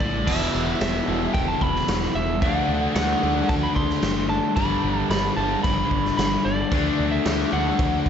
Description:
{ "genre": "hard rock", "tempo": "112 BPM", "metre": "4/4", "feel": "straight", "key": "E minor", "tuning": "A4 = 440 Hz", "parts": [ { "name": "lightly driven lead guitar", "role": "melody", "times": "0.0-8.1 s", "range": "D5 to C6", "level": "-26 LUFS", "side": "equal", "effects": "slapback echo" }, { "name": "biting overdriven guitar", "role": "riff", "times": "0.0-8.1 s", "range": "E2 to D4", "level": "-26 LUFS", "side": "left 3 dB", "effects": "none" }, { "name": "growling fingered electric bass", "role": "bass", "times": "0.0-8.1 s", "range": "E1 to D2", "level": "-28 LUFS", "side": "right 1 dB", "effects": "overdrive" }, { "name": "raw garage drum kit", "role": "drums", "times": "0.0-8.1 s", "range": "crash cymbal, kick drum, snare drum", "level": "-25 LUFS", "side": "right 1 dB", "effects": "none" }, { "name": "raw garage guitar", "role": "riff", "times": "0.3-8.1 s", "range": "E2 to D4", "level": "-29 LUFS", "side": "left 2 dB", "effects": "overdrive, phaser, slapback echo" } ], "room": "moderate lush hall reverb, RT60 1.7 s, small room ambience", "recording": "big arena sound, nothing above 7.8 kHz", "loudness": "-20 LUFS", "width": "side -8 dB against mid", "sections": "0.3-8.1 A section", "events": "none", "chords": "0.3 E5; 2.4 D; 4.6 G; 6.7 D" }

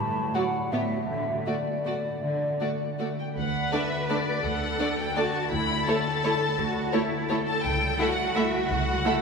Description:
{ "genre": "classical, orchestral ballroom waltz", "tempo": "150-183 BPM", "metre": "3/4", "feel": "rubato", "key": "D major", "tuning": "A4 = 441 Hz", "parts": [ { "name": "mellow hollow silver concert flute", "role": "second line", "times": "0.0-3.0 s", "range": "D5 to A5", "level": "-32 LUFS", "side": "left 2 dB", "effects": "none" }, { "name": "concert harp", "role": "arpeggios", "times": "0.0-9.2 s", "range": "A2 to D5", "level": "-34 LUFS", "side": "left 3 dB", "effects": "none" }, { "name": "rich studio cello section", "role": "bass", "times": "0.0-9.2 s", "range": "A2 to B4", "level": "-32 LUFS", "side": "right 2 dB", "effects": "none" }, { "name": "rich studio violin section", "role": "second line", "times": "0.3-9.1 s", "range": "F#4 to E5", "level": "-34 LUFS", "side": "left 2 dB", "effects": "none" }, { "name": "rich studio violin section", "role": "melody", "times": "0.4-9.2 s", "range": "C#5 to B5", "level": "-30 LUFS", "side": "left 3 dB", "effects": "none" }, { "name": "rich studio viola section", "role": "accompaniment", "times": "0.4-9.1 s", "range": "F#3 to E4", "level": "-31 LUFS", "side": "right 3 dB", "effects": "none" }, { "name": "rich studio double bass section", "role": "bass", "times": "3.4-9.0 s", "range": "C#2 to D2", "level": "-34 LUFS", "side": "right 3 dB", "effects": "none" } ], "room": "wet cathedral reverb, RT60 5.3 s", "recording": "recorded in a church or concert hall", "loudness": "-24 LUFS", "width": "side -5 dB against mid", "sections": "0.0-3.4 A section; 3.4-9.2 A section", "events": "none", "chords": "0.0 D/A; 0.7 A9; 1.1 D; 5.5 A/D; 7.6 A7/C#" }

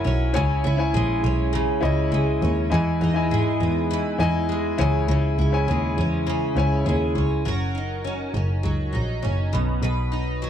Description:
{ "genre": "acoustic pop", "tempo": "101 BPM", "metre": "4/4", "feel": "straight", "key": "unclear", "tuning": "A4 = 439 Hz", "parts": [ { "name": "clear upright piano", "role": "accompaniment", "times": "0.0-7.5 s", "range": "E4 to G#5", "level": "-27 LUFS", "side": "left 6 dB", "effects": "none" }, { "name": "picked twelve-string acoustic guitar", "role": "accompaniment", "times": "0.0-10.5 s", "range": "B2 to B4", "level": "-25 LUFS", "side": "right 1 dB", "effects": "double-tracked left and right" }, { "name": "clear double bass", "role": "bass", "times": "0.0-10.5 s", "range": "F#1 to G#2", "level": "-23 LUFS", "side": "equal", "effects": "none" } ], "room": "little or no reverb", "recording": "dry, close 1970s-style studio recording", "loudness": "-20 LUFS", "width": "side -9 dB against mid", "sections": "0.0-7.5 A section; 7.5-10.5 B section", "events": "none", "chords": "0.3 C#m; 2.7 Emaj7; 4.8 C#m; 7.5 F#6; 9.5 Badd9" }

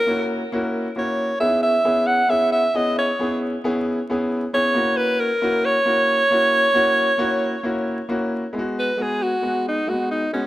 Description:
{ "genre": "soul", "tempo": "135 BPM", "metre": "4/4", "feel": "straight", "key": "C# dorian", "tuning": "A4 = 441 Hz", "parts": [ { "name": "edgy alto saxophone", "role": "melody", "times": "0.0-10.5 s", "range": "C#4 to F#5", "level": "-19 LUFS", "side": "right 1 dB", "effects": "tape echo" }, { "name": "clear grand piano", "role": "accompaniment", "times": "0.1-10.5 s", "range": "G#3 to G#4", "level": "-23 LUFS", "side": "left 1 dB", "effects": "none" } ], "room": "moderate plate reverb, RT60 2.7 s", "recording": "vinyl crackle", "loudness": "-18 LUFS", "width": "side -15 dB against mid", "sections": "0.0-8.5 A section; 8.5-10.5 B section", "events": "alto saxophone solo 8.5-10.5", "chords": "0.0 F#7; 1.4 C#m7; 4.7 F#7; 8.5 G#m7" }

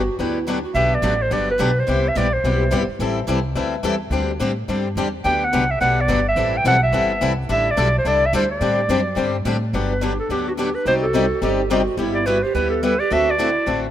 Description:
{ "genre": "acoustic string swing (jazz manouche)", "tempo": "214 BPM", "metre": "4/4", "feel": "swing 57% on 8ths", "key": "G major", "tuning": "A4 = 443 Hz", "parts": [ { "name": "reedy pan flute", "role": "second line", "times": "0.0-0.7, 9.7-13.9 s", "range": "D4 to A4", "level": "-25 LUFS", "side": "right 5 dB", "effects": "none" }, { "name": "upright bass", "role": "bass", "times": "0.0-13.9 s", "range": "G1 to A2", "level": "-24 LUFS", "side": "equal", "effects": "none" }, { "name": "picked steel-string acoustic guitar", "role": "accompaniment", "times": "0.2-13.9 s", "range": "C3 to D5", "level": "-28 LUFS", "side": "right 4 dB", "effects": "none" }, { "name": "picked swing-style acoustic guitar", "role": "accompaniment", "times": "0.2-13.9 s", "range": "C3 to D5", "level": "-23 LUFS", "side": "left 6 dB", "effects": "none" }, { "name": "breathy clarinet", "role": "melody", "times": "0.7-2.9, 5.2-13.8 s", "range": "F#4 to G5", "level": "-20 LUFS", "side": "right 2 dB", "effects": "none" } ], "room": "light reverb, small room ambience", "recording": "rough home demo mix", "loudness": "-17 LUFS", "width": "side -11 dB against mid", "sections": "0.8-9.7 A section; 9.7-13.9 B section", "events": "none", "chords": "0.0 Gmaj7; 1.9 Cmaj7; 3.0 Am7; 4.1 D7sus4; 5.2 Gmaj7; 6.4 Am9; 7.5 A7sus4; 8.6 D7sus4; 9.7 Gmaj7; 10.9 Cmadd9; 12.0 G6; 13.1 D7" }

